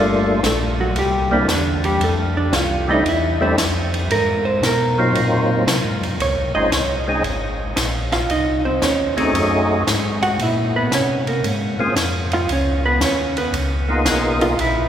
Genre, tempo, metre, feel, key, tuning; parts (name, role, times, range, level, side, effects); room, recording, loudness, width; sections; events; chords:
soul jazz organ trio; 114 BPM; 4/4; swing 67% on 8ths; Db major from 6.2 s; A4 = 438 Hz
percussive tonewheel organ; melody; 0.0-14.6 s; Gb3 to Ab4; -22 LUFS; equal; overdrive, chorus vibrato, slow rotary speaker
mellow tonewheel organ; bass; 0.0-14.9 s; G1 to C3; -22 LUFS; equal; slow rotary speaker
compact cocktail drum kit; drums; 0.4-14.8 s; hi-hat, ride cymbal, snare drum; -24 LUFS; equal
vintage hollow-body jazz guitar; accompaniment; 0.5-14.9 s; Bb2 to Gb5; -21 LUFS; right 2 dB
wet cathedral reverb, RT60 6.4 s; recorded in a church or concert hall; -16 LUFS; side -9 dB against mid
0.0-6.2 A section; 6.2-14.9 A section
hollow-body jazz guitar solo 0.0-14.9
0.0 Gm7; 1.0 C7; 2.0 Fmaj13; 4.1 Ab13; 6.2 Dbmaj9; 8.3 Cdim; 9.3 Gbm69; 10.4 Bbm9; 12.5 Db13